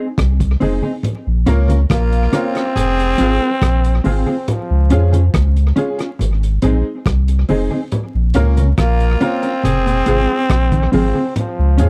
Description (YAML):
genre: roots reggae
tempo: 70 BPM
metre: 4/4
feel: straight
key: Bb minor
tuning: A4 = 440 Hz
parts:
  - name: mellow electric guitar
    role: accompaniment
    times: 0.0-11.9 s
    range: C4 to Bb4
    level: -24 LUFS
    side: equal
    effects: tape echo
  - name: warm sub bass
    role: bass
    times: 0.2-11.9 s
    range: F1 to F2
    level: -17 LUFS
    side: equal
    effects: tube saturation
  - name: crunchy breakbeat drum kit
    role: drums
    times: 0.2-11.9 s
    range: hi-hat, kick drum, rim click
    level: -24 LUFS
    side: equal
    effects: tape echo
  - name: clear upright piano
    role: stabs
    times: 0.6-11.9 s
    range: Ab3 to Bb4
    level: -24 LUFS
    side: equal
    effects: none
  - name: congas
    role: percussion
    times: 0.6-11.9 s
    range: none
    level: -25 LUFS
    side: equal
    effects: none
  - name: growling tenor saxophone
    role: second line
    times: 1.5-10.5 s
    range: Db4 to Ab4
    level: -29 LUFS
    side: equal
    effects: tape echo
  - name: growling trombone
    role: melody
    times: 1.9-11.9 s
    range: F3 to C4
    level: -22 LUFS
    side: equal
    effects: tape echo
  - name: mellow electric guitar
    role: arpeggios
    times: 8.3-11.9 s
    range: Bb2 to F3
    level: -24 LUFS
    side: equal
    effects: none
room: little or no reverb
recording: dry, close 1970s-style studio recording, vinyl crackle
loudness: -16 LUFS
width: mono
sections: 0.0-11.9 A section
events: none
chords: 0.0 Ab; 1.0 Bbm; 2.8 Fm; 4.5 Db; 6.2 Ab; 7.9 Bbm; 9.6 Fm; 11.4 Db